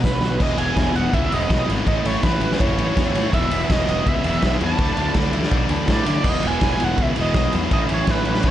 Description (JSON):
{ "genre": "indie rock", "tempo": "164 BPM", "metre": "4/4", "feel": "straight", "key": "E major", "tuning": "A4 = 441 Hz", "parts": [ { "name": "crunchy overdriven guitar", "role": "riff", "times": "0.0-8.5 s", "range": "E2 to F#4", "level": "-26 LUFS", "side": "right 6 dB", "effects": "lush chorus" }, { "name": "fuzz guitar", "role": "riff", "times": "0.0-8.5 s", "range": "E2 to E4", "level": "-26 LUFS", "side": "left 7 dB", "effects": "distortion" }, { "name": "fuzz picked electric bass", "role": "bass", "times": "0.0-8.5 s", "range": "E1 to D3", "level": "-25 LUFS", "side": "equal", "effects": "overdrive" }, { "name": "raw garage drum kit", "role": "drums", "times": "0.0-8.5 s", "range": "crash cymbal, hi-hat, kick drum, ride cymbal, snare drum", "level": "-21 LUFS", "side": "equal", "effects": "none" }, { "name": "overdriven synth lead", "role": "melody", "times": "0.1-8.5 s", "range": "B4 to A5", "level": "-25 LUFS", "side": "right 3 dB", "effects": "distortion, analog delay" } ], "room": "light reverb", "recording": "dark, warm production, nothing above 10.4 kHz", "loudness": "-17 LUFS", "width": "side -12 dB against mid", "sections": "0.4-8.5 A section", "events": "drum fill 0.2", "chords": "0.4 Emaj7; 1.9 A; 3.3 Emaj7; 4.8 Dsus2; 6.3 Emaj7; 7.7 A" }